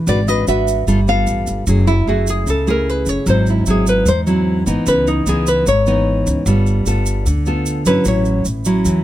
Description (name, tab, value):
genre	bossa nova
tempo	150 BPM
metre	4/4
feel	straight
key	unclear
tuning	A4 = 439 Hz
part	nylon-string guitar	accompaniment	0.0-9.0 s	G#2 to B4	-18 LUFS	right 1 dB	none
part	nylon-string guitar	melody	0.1-8.4 s	D#4 to F5	-18 LUFS	equal	none
part	upright bass	bass	0.1-9.0 s	F#1 to E2	-18 LUFS	equal	none
part	tube shaker	percussion	0.1-9.0 s	none	-27 LUFS	right 5 dB	none
room	little or no reverb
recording	close, detailed microphones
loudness	-13 LUFS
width	side -13 dB against mid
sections	0.0-9.0 A section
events	nylon-string guitar solo 0.0-9.0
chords	0.1 G#m7b5; 0.9 G9; 1.7 F#m9; 3.3 G#7alt; 4.9 C#m9; 6.5 G9; 8.1 A6